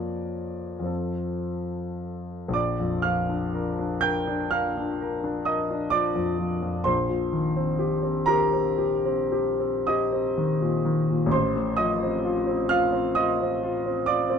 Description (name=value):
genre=classical, romantic nocturne for solo piano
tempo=35-45 BPM (dotted quarters)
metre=9/8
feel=rubato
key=Bb major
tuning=A4 = 443 Hz
part: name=warm grand piano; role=solo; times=0.0-14.4 s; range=A1 to G6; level=-23 LUFS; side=equal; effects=none
room=light reverb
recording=dark, warm production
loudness=-23 LUFS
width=side -7 dB against mid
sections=0.0-2.6 A section; 2.6-14.4 B section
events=none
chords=0.0 Bb/F; 0.9 F; 2.6 Bb; 6.9 Cm7/Bb; 11.3 F7/A